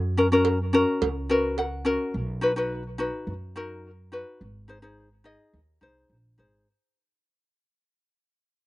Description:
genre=calypso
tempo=106 BPM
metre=4/4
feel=straight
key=unclear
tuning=A4 = 438 Hz
part: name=upright bass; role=bass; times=0.0-6.6 s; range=G#1 to F#2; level=-31 LUFS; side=right 1 dB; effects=none
part: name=ukulele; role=accompaniment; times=0.2-6.7 s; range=C#4 to F#5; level=-24 LUFS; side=left 2 dB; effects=none
part: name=cowbell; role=percussion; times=0.4-1.7 s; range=none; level=-30 LUFS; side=right 8 dB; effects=slapback echo
room=little or no reverb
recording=recorded outdoors, with no room sound, nothing above 10.3 kHz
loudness=-23 LUFS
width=side -17 dB against mid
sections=0.0-6.7 A section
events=fade-out 0.0-6.7; ukulele fill 1.0-2.1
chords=0.0 F#; 2.1 B; 4.4 G#

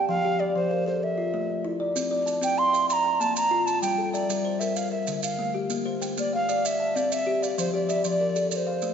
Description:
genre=southern african traditional, mbira-style interlocking cycle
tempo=128 BPM (dotted quarters)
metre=12/8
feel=straight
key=C mixolydian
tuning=A4 = 439 Hz
part: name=bright reedy alto ocarina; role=melody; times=0.0-8.9 s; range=C5 to C6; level=-26 LUFS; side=right 2 dB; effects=none
part: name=kalimba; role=arpeggios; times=0.0-8.9 s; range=D3 to A5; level=-27 LUFS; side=left 3 dB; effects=none
part: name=maracas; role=percussion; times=2.0-8.9 s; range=none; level=-35 LUFS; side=right 8 dB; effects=none
room=wet concert hall reverb, RT60 2.4 s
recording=recorded in a church or concert hall, nothing above 7.5 kHz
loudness=-23 LUFS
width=side -7 dB against mid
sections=0.0-8.9 A section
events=none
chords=0.1 F; 1.0 A5; 2.0 C; 2.9 Bb5; 3.8 Gm; 4.8 Dm; 5.7 Bb; 6.6 C; 7.6 F

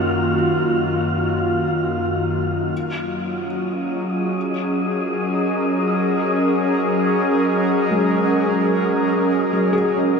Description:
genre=ambient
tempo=free time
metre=none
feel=none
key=F# major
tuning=A4 = 440 Hz
part: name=airy breathy pad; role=sustained chords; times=0.0-10.2 s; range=F#2 to A#4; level=-18 LUFS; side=equal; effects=chorus, shimmer reverb
part: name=felt-muted upright piano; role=arpeggios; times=0.0-10.2 s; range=F#3 to E#5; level=-28 LUFS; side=left 2 dB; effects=ping-pong delay
part: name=wind-like tuned noise texture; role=texture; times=0.0-10.2 s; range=D#5 to E#5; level=-26 LUFS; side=left 1 dB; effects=built-in reverb, shimmer reverb
room=wet huge ambient reverb, RT60 7.9 s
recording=none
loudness=-18 LUFS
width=side -5 dB against mid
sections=0.0-10.2 A section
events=none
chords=0.0 F#6

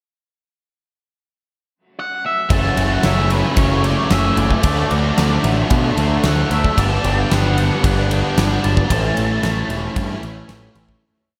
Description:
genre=rock, shoegaze and dream pop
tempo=113 BPM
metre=4/4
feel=straight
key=unclear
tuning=A4 = 440 Hz
part: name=octave-fuzz lead guitar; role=melody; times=2.0-10.4 s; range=B4 to A5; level=-27 LUFS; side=equal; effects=distortion, diffuse ambient delay
part: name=twangy electric guitar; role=arpeggios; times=2.5-11.0 s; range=E3 to A4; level=-31 LUFS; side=equal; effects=none
part: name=biting overdriven guitar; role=riff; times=2.5-11.0 s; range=F#2 to E4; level=-25 LUFS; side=equal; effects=analog chorus
part: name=overdriven electric guitar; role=riff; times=2.5-11.0 s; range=F#2 to A4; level=-25 LUFS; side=equal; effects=reverse reverb
part: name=growling picked electric bass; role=bass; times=2.5-10.9 s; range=E1 to B2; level=-22 LUFS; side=equal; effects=overdrive
part: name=huge arena drum kit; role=drums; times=2.5-11.0 s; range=kick drum, ride cymbal, snare drum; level=-23 LUFS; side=equal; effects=none
room=wet lush hall reverb, RT60 2.2 s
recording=dreamy mix soaked in reverb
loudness=-17 LUFS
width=mono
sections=0.4-2.5 pickup bar; 2.5-11.0 verse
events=fade-out 8.9-11.0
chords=0.4 N.C.; 2.5 F#m7; 4.6 D; 6.8 Gmaj7; 8.9 A

